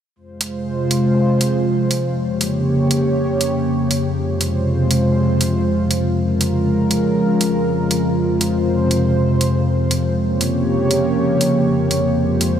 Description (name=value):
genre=melodic techno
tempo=120 BPM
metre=4/4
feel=straight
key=F minor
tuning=A4 = 440 Hz
part: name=lush unison pad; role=sustained chords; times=0.2-12.6 s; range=C3 to Db5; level=-17 LUFS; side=equal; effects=chorus
part: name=analog drone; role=drone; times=0.4-12.6 s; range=F2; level=-23 LUFS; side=left 1 dB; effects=chorus
part: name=electronic hi-hat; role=drums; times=0.4-12.5 s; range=none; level=-22 LUFS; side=right 1 dB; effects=overdrive
room=wet huge ambient reverb, RT60 7.4 s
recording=dreamy mix soaked in reverb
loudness=-15 LUFS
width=side -9 dB against mid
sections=0.2-12.6 A section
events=none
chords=0.2 Fm; 2.2 Gdim; 4.2 Fm; 6.2 Bbm7; 8.2 Fm; 10.2 Gdim